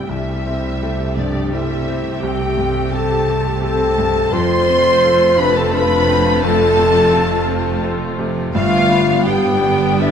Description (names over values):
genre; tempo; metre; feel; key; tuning
cinematic, emotional film score for orchestra; 85 BPM; 3/4; rubato; unclear; A4 = 440 Hz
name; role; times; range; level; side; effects
dark studio violin section; melody; 0.0-10.1 s; D5 to C6; -27 LUFS; left 1 dB; none
rich studio violin section; second line; 0.0-10.1 s; D5 to C6; -26 LUFS; left 2 dB; none
small flute group; second line; 0.0-10.1 s; D5 to C6; -24 LUFS; left 2 dB; none
warm clarinet; second line; 0.0-10.1 s; F3 to F4; -25 LUFS; left 1 dB; none
clear concert grand piano; accompaniment; 0.0-10.1 s; C2 to A4; -24 LUFS; right 1 dB; none
rich studio viola section; accompaniment; 0.0-10.1 s; A3 to G4; -26 LUFS; equal; none
warm French horn section; sustained chords; 0.0-10.1 s; D4 to C5; -17 LUFS; left 1 dB; none
concert harp; arpeggios; 0.0-10.1 s; F2 to D5; -26 LUFS; left 7 dB; none
rich studio cello section; bass; 0.0-10.1 s; F2 to C3; -26 LUFS; right 4 dB; none
warm studio double bass section; bass; 0.0-10.1 s; F1 to C2; -24 LUFS; right 4 dB; none
room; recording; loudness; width
moderate scoring stage reverb, RT60 1.7 s; none; -14 LUFS; side -8 dB against mid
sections
0.0-10.1 A section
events
none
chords
0.1 Am7/C; 4.3 F; 8.6 G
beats
| 0.11 0.82 1.52 | 2.23 2.93 3.63 | 4.33 5.04 5.74 | 6.44 7.14 7.85 | 8.55 9.27 10.02